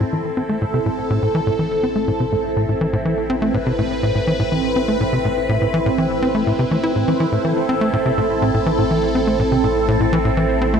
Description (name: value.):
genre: ambient, sequencer-driven space music.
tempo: 123 BPM.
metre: 4/4.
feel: straight.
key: A minor.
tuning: A4 = 440 Hz.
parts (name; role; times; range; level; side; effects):
phased analog pad; sustained chords; 0.0-10.8 s; C4 to B4; -20 LUFS; right 1 dB; phaser, chorus.
vibraphone with soft mallets; arpeggios; 0.0-10.8 s; A3 to C5; -29 LUFS; moving between left 5 dB and right 2 dB; none.
tight sequencer bass; riff; 0.0-10.8 s; A2 to E4; -20 LUFS; left 1 dB; analog delay.
round analog bass; bass; 0.0-10.8 s; A1; -30 LUFS; left 1 dB; none.
room: wet huge ambient reverb, RT60 8.7 s.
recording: none.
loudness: -16 LUFS.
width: side -7 dB against mid.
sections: 0.0-10.8 A section.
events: fade-in on analog synth bass 0.0-10.8.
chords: 0.0 Am.